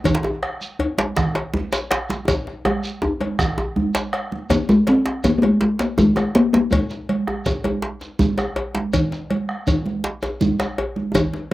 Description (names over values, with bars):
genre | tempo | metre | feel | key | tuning
west african traditional, West African drum ensemble | 108 BPM (dotted quarters) | 12/8 | straight | Ab major pentatonic | A4 = 443 Hz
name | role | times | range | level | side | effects
djembe | percussion | 0.0-11.5 s | none | -27 LUFS | left 2 dB | none
bombo | percussion | 0.1-11.3 s | none | -27 LUFS | equal | none
congas | percussion | 0.1-11.5 s | none | -24 LUFS | right 3 dB | none
cowbell | percussion | 0.1-11.3 s | none | -28 LUFS | left 4 dB | none
djembe | percussion | 0.1-11.3 s | none | -25 LUFS | equal | none
shekere | percussion | 0.1-11.3 s | none | -32 LUFS | right 2 dB | none
talking drum | melody | 4.5-7.1 s | Ab3 to C4 | -16 LUFS | left 1 dB | none
room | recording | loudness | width
light reverb | recorded outdoors, with no room sound | -18 LUFS | side -16 dB against mid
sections
0.0-4.5 A section; 4.5-11.5 B section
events
drum fill 2.3-4.5, 11.1-11.5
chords
none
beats
| 0.05 0.61 1.17 1.72 | 2.28 2.83 3.39 3.95 | 4.50 5.06 5.61 6.17 | 6.72 7.27 7.83 8.38 | 8.93 9.49 10.04 10.59 | 11.14